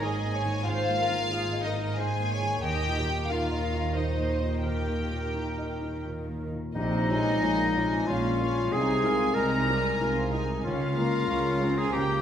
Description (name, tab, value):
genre	cinematic, emotional film score for orchestra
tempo	84-95 BPM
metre	3/4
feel	rubato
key	Ab major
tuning	A4 = 440 Hz
part	warm studio violin section	melody	0.0-12.2 s	Eb5 to Bb5	-34 LUFS	left 3 dB	none
part	warm studio violin section	second line	0.0-12.2 s	Eb4 to Bb5	-34 LUFS	left 1 dB	none
part	felt-muted upright piano	accompaniment	0.0-12.2 s	Bb1 to Eb5	-33 LUFS	left 1 dB	none
part	warm studio viola section	accompaniment	0.0-12.2 s	C3 to Eb5	-35 LUFS	right 1 dB	none
part	dark studio cello section	bass	0.0-12.2 s	Ab2 to Eb3	-34 LUFS	right 2 dB	none
part	dark studio double bass section	bass	0.0-12.2 s	Ab1 to Eb2	-33 LUFS	right 2 dB	none
part	clear clarinet	second line	6.7-12.2 s	Eb4 to Bb4	-28 LUFS	left 2 dB	none
room	wet recital hall reverb, RT60 1.4 s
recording	recorded in a church or concert hall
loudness	-25 LUFS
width	side -9 dB against mid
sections	0.0-6.8 A section; 6.8-12.2 B section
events	none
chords	0.0 Absus2; 2.6 Eb; 6.8 Bbm7; 8.7 Abadd9/C; 10.6 Db6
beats	0.03 | 0.67 1.31 1.98 | 2.64 3.30 3.96 | 4.65 5.35 6.05 | 6.75 7.42 8.08 | 8.72 9.36 10.01 | 10.65 11.29 11.93